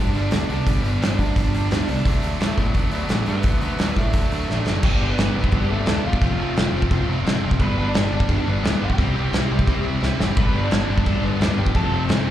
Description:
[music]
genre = punk rock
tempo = 173 BPM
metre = 4/4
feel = straight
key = G mixolydian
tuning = A4 = 442 Hz
[part]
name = lead guitar through a small cranked amp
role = melody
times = 0.0-12.3 s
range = A3 to B5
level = -29 LUFS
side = right 1 dB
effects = overdrive, slapback echo, tape echo
[part]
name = crunchy overdriven guitar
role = riff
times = 0.0-12.3 s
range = F2 to E4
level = -27 LUFS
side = left 8 dB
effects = slapback echo
[part]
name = distorted electric guitar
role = riff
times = 0.0-12.3 s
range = F2 to E4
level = -29 LUFS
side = right 10 dB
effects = overdrive
[part]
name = growling picked electric bass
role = bass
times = 0.0-12.3 s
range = E1 to A2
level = -24 LUFS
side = equal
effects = overdrive
[part]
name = loose indie drum kit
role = drums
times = 0.1-12.2 s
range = crash cymbal, hi-hat, kick drum, snare drum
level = -22 LUFS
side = equal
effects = none
[part]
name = fuzz guitar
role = riff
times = 10.4-12.3 s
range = F2 to G3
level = -28 LUFS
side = equal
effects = distortion
[sound]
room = little or no reverb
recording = live gig heard through the venue's PA, club reverb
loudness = -18 LUFS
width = side -12 dB against mid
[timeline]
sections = 0.0-4.8 A section; 4.8-12.3 B section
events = drum fill 4.5-4.8, 10.0-10.4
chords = 0.0 G; 2.1 D; 4.8 G; 6.2 F; 7.6 G; 9.0 C; 10.4 G; 11.8 F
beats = 0.33 | 0.67 1.02 1.37 1.71 | 2.06 2.41 2.75 3.10 | 3.45 3.79 4.14 4.49 | 4.83 5.18 5.53 5.87 | 6.22 6.56 6.91 7.25 | 7.60 7.95 8.29 8.64 | 8.98 9.33 9.68 10.02 | 10.37 10.71 11.06 11.41 | 11.75 12.10

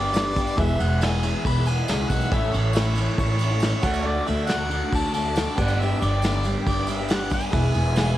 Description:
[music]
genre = folk rock and heartland rock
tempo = 138 BPM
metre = 4/4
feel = straight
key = unclear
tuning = A4 = 440 Hz
[part]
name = warm harmonica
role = melody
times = 0.0-8.2 s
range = C#5 to B5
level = -29 LUFS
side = left 1 dB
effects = cassette tape
[part]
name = bright baby grand piano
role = accompaniment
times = 0.0-8.2 s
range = D4 to C#6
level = -35 LUFS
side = right 2 dB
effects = none
[part]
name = picked steel-string acoustic guitar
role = accompaniment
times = 0.0-8.2 s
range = E2 to G#4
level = -30 LUFS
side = left 3 dB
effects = none
[part]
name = rich studio string section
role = sustained chords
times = 0.0-8.2 s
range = A4 to E6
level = -37 LUFS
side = equal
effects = none
[part]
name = crunchy overdriven guitar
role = riff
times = 0.0-8.2 s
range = E2 to G#4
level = -30 LUFS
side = equal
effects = phaser
[part]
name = upright bass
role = bass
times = 0.0-8.2 s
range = E1 to D2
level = -24 LUFS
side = equal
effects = none
[part]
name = tambourine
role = percussion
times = 0.0-8.1 s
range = none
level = -44 LUFS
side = right 6 dB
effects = none
[part]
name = soft brush drum kit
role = drums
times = 0.2-8.1 s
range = crash cymbal, kick drum, ride cymbal, snare drum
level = -26 LUFS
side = right 1 dB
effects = cassette tape
[sound]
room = little or no reverb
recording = home recording on cassette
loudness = -20 LUFS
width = side -13 dB against mid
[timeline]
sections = 0.0-8.2 A section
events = none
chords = 0.0 G; 0.6 E; 2.3 A; 3.8 D; 5.6 G; 7.5 E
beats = 0.15 | 0.59 1.02 1.45 1.89 | 2.32 2.75 3.19 3.62 | 4.05 4.49 4.92 5.36 | 5.79 6.22 6.66 7.09 | 7.53 7.96

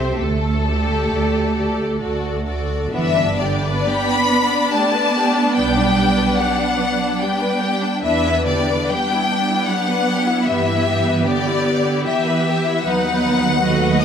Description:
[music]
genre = classical, slow romantic movement for string orchestra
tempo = 61-79 BPM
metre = 3/4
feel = rubato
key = G major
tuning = A4 = 439 Hz
[part]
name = warm symphonic violin section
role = melody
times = 0.0-14.0 s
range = D5 to D#6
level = -21 LUFS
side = left 4 dB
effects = none
[part]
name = rich symphonic violin section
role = second line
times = 0.0-14.0 s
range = B3 to D#5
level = -24 LUFS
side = left 2 dB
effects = none
[part]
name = rich symphonic viola section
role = accompaniment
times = 0.0-14.0 s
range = A3 to A4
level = -22 LUFS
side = right 1 dB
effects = none
[part]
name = rich symphonic cello section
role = bass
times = 0.0-14.0 s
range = D3 to C4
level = -24 LUFS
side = right 4 dB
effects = none
[part]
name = warm symphonic double bass section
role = bass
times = 0.0-14.0 s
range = G1 to G2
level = -24 LUFS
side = right 3 dB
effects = none
[sound]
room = moderate concert hall reverb, RT60 1.9 s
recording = none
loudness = -16 LUFS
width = side -8 dB against mid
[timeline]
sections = 0.0-2.9 A section; 2.9-14.0 B section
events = none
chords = 0.2 Dsus4; 2.0 D; 2.9 G; 5.6 G/B; 8.0 Em7; 10.5 Em/G; 12.8 B/D#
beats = | 0.18 1.11 2.02 | 2.93 3.87 4.74 | 5.57 6.38 7.20 | 8.03 8.91 9.69 | 10.47 11.25 12.05 | 12.85 13.62

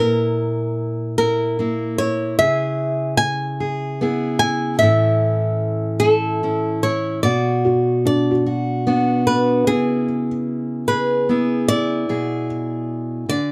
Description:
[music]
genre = folk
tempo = 50 BPM (dotted quarters)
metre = 6/8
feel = straight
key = unclear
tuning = A4 = 436 Hz
[part]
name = flamenco guitar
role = melody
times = 0.0-13.5 s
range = G#4 to G#5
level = -22 LUFS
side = equal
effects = none
[part]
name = fingerpicked steel-string acoustic guitar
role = accompaniment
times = 0.0-13.5 s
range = A2 to A4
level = -23 LUFS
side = equal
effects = none
[part]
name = felt-muted upright piano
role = arpeggios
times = 7.6-12.4 s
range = B3 to F#4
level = -26 LUFS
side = equal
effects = none
[sound]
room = little or no reverb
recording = close, detailed microphones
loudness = -20 LUFS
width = mono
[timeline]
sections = 0.0-13.5 A section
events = none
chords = 0.0 A#(b5, no3); 2.4 C#m7; 4.8 A; 7.2 Bm; 9.7 C#m7; 12.1 Bm6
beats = 1.18 | 2.39 3.60 | 4.81 6.02 | 7.24 8.46 | 9.68 10.88 | 12.09 13.29

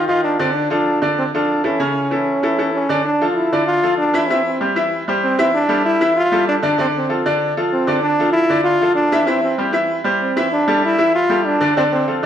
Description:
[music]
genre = latin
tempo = 193 BPM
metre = 4/4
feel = straight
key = D minor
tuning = A4 = 442 Hz
[part]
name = bright trombone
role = melody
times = 0.0-12.2 s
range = C4 to F4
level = -18 LUFS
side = equal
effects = none
[part]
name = bright baby grand piano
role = accompaniment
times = 0.0-12.3 s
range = C#3 to E5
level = -18 LUFS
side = equal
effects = none
[sound]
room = wet large studio reverb, RT60 1.4 s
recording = none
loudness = -15 LUFS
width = side -9 dB against mid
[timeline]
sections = 0.0-3.0 A section; 3.0-12.3 B section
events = none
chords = 0.0 F5; 0.6 Dmadd9; 1.8 A; 3.0 Dm; 4.3 C; 5.5 A5; 6.8 Dm; 9.3 C; 10.5 A5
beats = 0.24 | 0.55 0.86 1.18 1.49 | 1.80 2.11 2.42 2.73 | 3.04 3.36 3.67 3.98 | 4.29 4.60 4.91 5.22 | 5.54 5.85 6.16 6.47 | 6.78 7.09 7.40 7.72 | 8.03 8.34 8.65 8.96 | 9.27 9.59 9.90 10.21 | 10.52 10.83 11.14 11.45 | 11.76 12.07

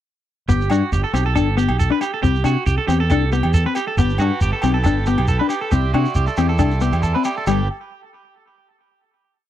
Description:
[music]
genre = highlife guitar band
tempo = 137 BPM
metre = 4/4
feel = straight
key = G major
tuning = A4 = 440 Hz
[part]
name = clean electric guitar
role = accompaniment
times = 0.5-7.6 s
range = G3 to D4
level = -20 LUFS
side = left 8 dB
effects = lush chorus
[part]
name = electric guitar at the edge of break-up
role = arpeggios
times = 0.5-7.7 s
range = F#4 to B4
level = -24 LUFS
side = right 5 dB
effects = phaser, tape echo
[part]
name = fingered electric bass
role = bass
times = 0.5-7.7 s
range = G1 to C3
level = -19 LUFS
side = right 1 dB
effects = none
[part]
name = shekere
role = percussion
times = 0.5-7.7 s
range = none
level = -21 LUFS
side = equal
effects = none
[part]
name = agogo bells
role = percussion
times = 0.7-7.6 s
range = none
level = -29 LUFS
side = right 1 dB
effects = none
[part]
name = combo organ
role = sustained chords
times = 4.0-7.7 s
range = A4 to C6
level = -32 LUFS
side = right 1 dB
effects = none
[sound]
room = little or no reverb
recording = dry, close 1970s-style studio recording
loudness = -16 LUFS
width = side -12 dB against mid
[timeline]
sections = 0.5-7.5 groove; 7.5-9.2 final chord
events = none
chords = 0.5 Gadd9; 2.2 Cadd9; 4.0 Gadd9; 5.7 Cadd9; 7.5 N.C.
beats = | 0.49 0.92 1.36 1.80 | 2.23 2.67 3.10 3.54 | 3.98 4.42 4.85 5.29 | 5.73 6.16 6.60 7.04 | 7.47

